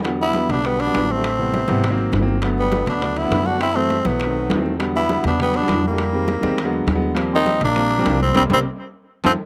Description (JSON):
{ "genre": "Afro-Cuban jazz", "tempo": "202 BPM", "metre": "4/4", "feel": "straight", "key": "unclear", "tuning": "A4 = 440 Hz", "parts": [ { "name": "warm grand piano", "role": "accompaniment", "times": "0.0-9.3 s", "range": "C3 to Eb4", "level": "-25 LUFS", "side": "equal", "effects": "none" }, { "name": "upright bass", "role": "bass", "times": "0.0-9.4 s", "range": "G1 to F#2", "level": "-27 LUFS", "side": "equal", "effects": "none" }, { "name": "congas", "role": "percussion", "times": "0.0-9.3 s", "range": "none", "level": "-30 LUFS", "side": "equal", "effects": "none" }, { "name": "timbales", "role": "percussion", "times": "0.0-9.3 s", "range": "none", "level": "-33 LUFS", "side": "equal", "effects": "slapback echo" }, { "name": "bongos", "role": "percussion", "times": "0.1-9.3 s", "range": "none", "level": "-31 LUFS", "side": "equal", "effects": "none" }, { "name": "growling tenor saxophone", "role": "melody", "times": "0.2-9.3 s", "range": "Bb3 to F#4", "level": "-23 LUFS", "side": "equal", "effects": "none" }, { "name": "trombone with metal mute", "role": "second line", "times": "0.2-9.3 s", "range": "F3 to D4", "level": "-28 LUFS", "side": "equal", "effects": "none" } ], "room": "little or no reverb", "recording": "recorded outdoors, with no room sound", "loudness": "-19 LUFS", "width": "mono", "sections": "0.1-9.5 A section", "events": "band accent 8.4-9.5; drum fill 8.6-9.5", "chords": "0.1 Em7; 1.2 Am7; 1.8 Ab9; 2.4 Gmaj7; 3.6 F#m7b5; 4.2 B7b9; 4.8 Em9; 6.0 Fm9; 6.6 E9; 7.2 Eb69; 8.4 C5; 8.9 F7" }